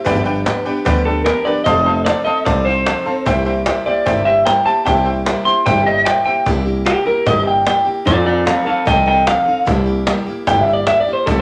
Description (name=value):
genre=rockabilly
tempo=150 BPM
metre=4/4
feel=straight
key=C mixolydian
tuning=A4 = 445 Hz
part: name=electric guitar through a small old amp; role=melody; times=0.0-11.4 s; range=F4 to C6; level=-17 LUFS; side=equal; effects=none
part: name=bright upright piano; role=accompaniment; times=0.0-6.4 s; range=B4 to Bb5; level=-24 LUFS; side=equal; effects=none
part: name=picked steel-string acoustic guitar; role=accompaniment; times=0.0-11.4 s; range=G2 to A4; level=-25 LUFS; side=equal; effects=none
part: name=upright bass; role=bass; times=0.1-11.4 s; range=F1 to F2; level=-23 LUFS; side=equal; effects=none
part: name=cajon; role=drums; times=0.1-11.4 s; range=none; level=-24 LUFS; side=equal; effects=none
room=moderate large studio reverb, RT60 1.0 s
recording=none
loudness=-15 LUFS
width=mono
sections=0.0-6.5 A section; 6.5-11.4 B section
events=clean electric guitar solo 6.5-11.4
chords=0.1 G7; 1.7 F7; 3.3 C7; 8.1 F7; 9.7 C7